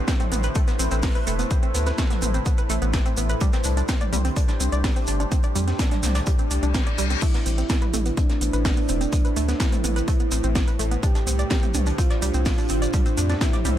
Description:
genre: melodic techno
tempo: 126 BPM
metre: 4/4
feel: straight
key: A minor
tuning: A4 = 440 Hz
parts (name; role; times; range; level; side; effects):
- deep dark ambient pad; sustained chords; 0.0-13.8 s; A3 to D5; -31 LUFS; equal; chorus, built-in reverb, sidechain pumping
- warbly dusty pluck; arpeggios; 0.0-13.7 s; G3 to D6; -30 LUFS; right 2 dB; chorus, sidechain pumping, tape echo
- bowed-like drone; drone; 0.0-13.8 s; A2; -36 LUFS; equal; built-in reverb, sidechain pumping
- electronic kick drum; drums; 0.1-13.5 s; none; -22 LUFS; equal; none
- house drum kit; drums; 0.1-13.7 s; crash cymbal, hi-hat, snare drum, toms; -30 LUFS; right 1 dB; none
- vintage brush drum kit; drums; 0.1-13.8 s; hi-hat, snare drum; -38 LUFS; right 2 dB; none
- maracas; percussion; 0.1-13.7 s; none; -34 LUFS; right 1 dB; none
- round analog bass; bass; 0.3-13.8 s; E1 to F2; -24 LUFS; equal; sidechain pumping
- reverse cymbal; sound effects; 6.6-7.2 s; none; -34 LUFS; left 8 dB; none
- expressive synth lead; melody; 7.2-13.8 s; D4 to G4; -30 LUFS; right 2 dB; wide subtle chorus, sidechain pumping, digital delay
room: little or no reverb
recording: none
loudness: -20 LUFS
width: side -12 dB against mid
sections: 0.0-13.8 A section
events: reverse cymbal 6.6-7.2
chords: 0.0 Amadd9; 3.4 Csus2; 7.2 Amadd9; 11.0 Csus2

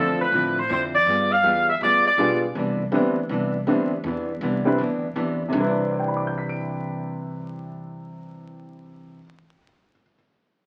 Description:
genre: jazz, big band swing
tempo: 161 BPM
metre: 4/4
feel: swing 65% on 8ths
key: C major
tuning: A4 = 440 Hz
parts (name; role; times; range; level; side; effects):
- bright saxophone section; melody; 0.0-2.4 s; A4 to F5; -21 LUFS; equal; none
- clear grand piano; accompaniment; 0.0-10.1 s; C3 to D7; -27 LUFS; equal; none
- hollow-body jazz guitar; accompaniment; 0.0-9.4 s; C3 to Ab4; -30 LUFS; equal; none
- upright bass; bass; 0.0-9.2 s; B1 to A2; -34 LUFS; equal; none
room: wet large studio reverb, RT60 0.9 s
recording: very old 78 rpm record, vinyl crackle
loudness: -23 LUFS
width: mono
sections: 0.0-5.5 A section; 5.5-8.5 B section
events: none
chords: 0.0 Dm9; 1.1 G7b9; 2.6 Cmaj9

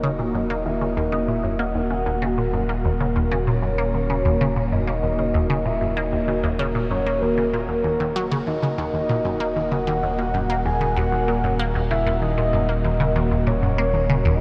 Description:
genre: ambient, sequencer-driven space music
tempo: 96 BPM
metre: 4/4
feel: straight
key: Eb minor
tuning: A4 = 441 Hz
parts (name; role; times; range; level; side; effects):
- soft octave-layered synth lead; melody; 0.0-14.4 s; Bb4 to Ab5; -28 LUFS; equal; chorus, shimmer reverb, delay
- sweeping resonant pad; sustained chords; 0.0-14.4 s; Bb3 to Ab5; -29 LUFS; equal; chorus, shimmer reverb
- resonant blip pluck; riff; 0.0-14.4 s; Eb2 to Bb3; -27 LUFS; equal; phaser, shimmer reverb, delay
- round analog bass; bass; 0.0-14.4 s; Eb1; -29 LUFS; equal; none
room: wet huge ambient reverb, RT60 8.1 s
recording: in a vast, echoing space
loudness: -22 LUFS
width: mono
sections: 0.0-14.4 A section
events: none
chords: 0.0 Ebm

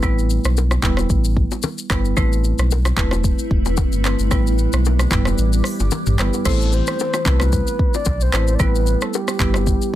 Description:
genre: afrobeats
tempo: 112 BPM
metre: 4/4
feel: swing 55% on 16ths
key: A minor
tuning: A4 = 438 Hz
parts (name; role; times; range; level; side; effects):
- marimba with medium hard mallets; accompaniment; 0.0-9.7 s; G3 to C5; -24 LUFS; right 3 dB; none
- sub bass with octave; bass; 0.0-9.8 s; E1 to C2; -18 LUFS; equal; none
- afro-pop drum kit; drums; 0.0-9.9 s; crash cymbal, handclaps, hi-hat, kick drum, rim click, shaker, toms; -21 LUFS; equal; soft clipping on snare
- congas and bongos; percussion; 0.0-9.7 s; none; -28 LUFS; left 6 dB; none
- granular cloud pad; sustained chords; 2.8-6.4 s; E3 to B4; -28 LUFS; left 2 dB; built-in reverb, sidechain pumping
- soft octave-layered synth lead; melody; 6.5-10.0 s; G4 to D5; -24 LUFS; left 1 dB; chorus, ping-pong delay
room: little or no reverb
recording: dense, heavily limited modern master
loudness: -16 LUFS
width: side -13 dB against mid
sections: 0.0-6.5 A section; 6.5-10.0 B section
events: kick muted 5.4-6.5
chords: 0.0 Em; 2.2 Amadd9; 4.3 Em; 6.5 Amadd9; 8.6 Em

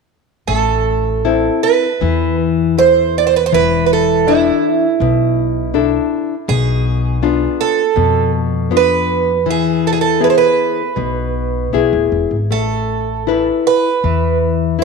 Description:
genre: fado-style ballad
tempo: 80 BPM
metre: 4/4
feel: rubato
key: A harmonic minor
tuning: A4 = 440 Hz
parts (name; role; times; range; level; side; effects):
- picked twelve-string acoustic guitar; melody; 0.5-14.4 s; E4 to D5; -15 LUFS; right 10 dB; none
- nylon-string guitar; accompaniment; 0.5-14.8 s; B2 to C5; -17 LUFS; left 10 dB; none
- upright bass; bass; 0.5-14.8 s; D1 to F2; -20 LUFS; left 1 dB; none
room: moderate echo chamber reverb, RT60 1.7 s, small room ambience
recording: 1960s-style stereo with parts hard left and right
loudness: -13 LUFS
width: side -4 dB against mid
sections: 0.5-14.8 A section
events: none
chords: 0.5 Am; 3.5 E7sus4; 6.5 Bdim; 9.5 E; 12.5 Asus2

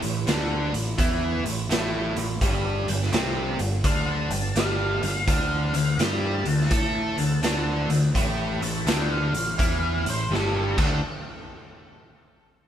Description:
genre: blues rock power trio and southern rock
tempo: 84 BPM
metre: 4/4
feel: swing 65% on 8ths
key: unclear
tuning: A4 = 441 Hz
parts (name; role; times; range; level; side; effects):
- overdriven tonewheel organ; sustained chords; 0.0-11.0 s; E3 to D5; -37 LUFS; right 4 dB; slow rotary speaker, chorus vibrato
- distorted electric guitar; riff; 0.0-11.0 s; G2 to A4; -27 LUFS; equal; overdrive
- growling picked electric bass; bass; 0.0-11.0 s; G1 to A2; -28 LUFS; equal; overdrive
- raw garage drum kit; drums; 0.0-10.9 s; crash cymbal, hi-hat, kick drum, snare drum; -27 LUFS; equal; none
- octave-fuzz lead guitar; melody; 3.9-11.0 s; A4 to A5; -31 LUFS; left 2 dB; wah, distortion, digital delay
room: light reverb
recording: band playing live in one room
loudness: -22 LUFS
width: side -10 dB against mid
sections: 0.0-11.0 A section; 11.0-12.7 B section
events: drum fill 10.3-11.0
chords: 0.0 A7; 2.4 G7; 5.3 D7; 8.2 A7; 10.7 D7; 11.0 N.C.

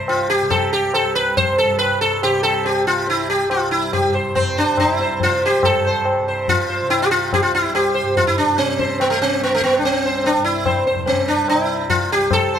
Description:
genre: indian classical, Hindustani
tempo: 142 BPM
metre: 4/4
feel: straight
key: C raga bilaval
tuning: A4 = 441 Hz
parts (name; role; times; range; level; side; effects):
- sitar; melody; 0.0-12.6 s; A3 to C5; -16 LUFS; equal; none
- tanpura; drone; 0.0-12.6 s; C2 to C3; -28 LUFS; right 2 dB; none
- tabla; percussion; 0.1-12.5 s; none; -24 LUFS; left 3 dB; none
room: light reverb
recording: close, detailed microphones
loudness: -15 LUFS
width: side -8 dB against mid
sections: 0.0-5.6 A section; 5.6-12.6 B section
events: speeding up 0.0-12.6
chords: none

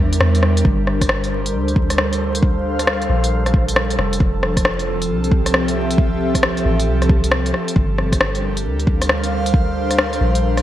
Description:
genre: future garage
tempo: 135 BPM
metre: 4/4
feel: swing 64% on 16ths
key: G dorian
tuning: A4 = 441 Hz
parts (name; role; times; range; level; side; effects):
- airy breathy pad; sustained chords; 0.0-10.6 s; C3 to F5; -21 LUFS; right 1 dB; chorus, sidechain pumping
- soft 808-style bass; bass; 0.0-10.6 s; F1 to E2; -21 LUFS; equal; sidechain pumping
- deep house drum kit; drums; 0.1-10.6 s; hi-hat, rim click; -20 LUFS; left 1 dB; vintage 12-bit sampler grit, gated reverb
- electronic kick drum; drums; 0.6-9.7 s; none; -16 LUFS; equal; vintage 12-bit sampler grit
room: light reverb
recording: bright 1980s-style digital production, vinyl crackle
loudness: -15 LUFS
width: side -12 dB against mid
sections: 0.0-10.6 A section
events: none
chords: 0.0 C9; 0.6 Gm11; 4.2 Fmaj7; 7.8 Gm11

